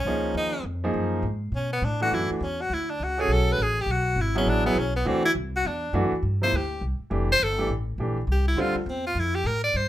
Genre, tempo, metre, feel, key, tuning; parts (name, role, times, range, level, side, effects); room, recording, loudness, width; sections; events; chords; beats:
modal jazz; 204 BPM; 4/4; swing 63% on 8ths; G dorian from 6.2 s; A4 = 440 Hz
bright tenor saxophone; melody; 0.0-9.9 s; A3 to D5; -25 LUFS; equal
upright bass; bass; 0.0-9.9 s; F1 to B2; -27 LUFS; equal
clear baby grand piano; accompaniment; 0.1-8.7 s; C3 to A4; -27 LUFS; right 1 dB
moderate club reverb, RT60 0.6 s; minimal, uncompressed stereo recording; -23 LUFS; side -13 dB against mid
0.0-6.2 A section; 6.2-9.9 A section
tenor saxophone solo 0.0-9.9
0.0 G#9sus4; 1.5 Bm11; 5.1 D9; 6.2 G9sus4
0.06 | 0.35 0.65 0.94 1.24 | 1.53 1.82 2.12 2.41 | 2.71 3.00 3.29 3.59 | 3.88 4.18 4.47 4.76 | 5.06 5.35 5.64 5.94 | 6.23 6.52 6.82 7.11 | 7.40 7.70 7.99 8.28 | 8.58 8.87 9.16 9.45 | 9.74